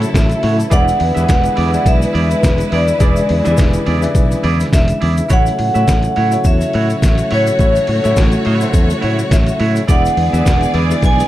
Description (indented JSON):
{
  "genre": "disco",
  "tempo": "105 BPM",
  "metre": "4/4",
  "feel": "swing 56% on 16ths",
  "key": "A major",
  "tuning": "A4 = 440 Hz",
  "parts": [
    { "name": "clear studio string section", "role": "second line", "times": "0.0-11.3 s", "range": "F#3 to D5", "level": "-22 LUFS", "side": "equal", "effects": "none" },
    { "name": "twangy electric guitar", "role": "accompaniment", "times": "0.0-11.2 s", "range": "E4 to E5", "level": "-26 LUFS", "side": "right 7 dB", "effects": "none" },
    { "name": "warm baby grand piano", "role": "accompaniment", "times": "0.0-11.3 s", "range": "E3 to D5", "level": "-24 LUFS", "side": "left 5 dB", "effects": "none" },
    { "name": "mellow tonewheel organ", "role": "sustained chords", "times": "0.0-11.3 s", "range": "C#3 to E4", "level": "-23 LUFS", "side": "right 1 dB", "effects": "chorus vibrato, fast rotary speaker" },
    { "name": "fingered electric bass", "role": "bass", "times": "0.0-11.2 s", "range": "E1 to A2", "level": "-16 LUFS", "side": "equal", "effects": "none" },
    { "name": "trip hop sampler-style drum kit", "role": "drums", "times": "0.0-11.3 s", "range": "hi-hat, kick drum, snare drum", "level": "-15 LUFS", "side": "equal", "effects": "none" },
    { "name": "tube shaker", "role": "percussion", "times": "0.0-11.3 s", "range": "none", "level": "-34 LUFS", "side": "left 7 dB", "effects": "none" },
    { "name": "vibraphone with medium hard mallets", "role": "melody", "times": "0.2-11.3 s", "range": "C#5 to G#5", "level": "-18 LUFS", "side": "equal", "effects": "none" }
  ],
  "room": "studio ambience",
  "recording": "dark, warm production",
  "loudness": "-11 LUFS",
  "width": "side -14 dB against mid",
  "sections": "0.0-11.3 A section",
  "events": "none",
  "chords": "0.0 A6; 0.7 E7; 5.3 A6; 9.9 E7"
}